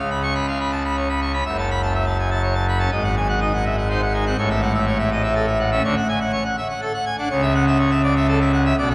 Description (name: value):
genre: classical, organ toccata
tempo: 123 BPM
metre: 3/4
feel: straight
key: C# minor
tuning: A4 = 436 Hz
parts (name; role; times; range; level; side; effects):
- pipe organ, full organ; solo; 0.0-8.9 s; F#1 to C#6; -20 LUFS; equal; none
room: wet cathedral reverb, RT60 5.0 s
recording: none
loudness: -21 LUFS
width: mono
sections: 0.0-8.9 A section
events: none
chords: 0.0 C#7; 1.5 F#m7; 2.9 G#7; 4.4 A; 5.8 Dmaj7; 7.3 A/C#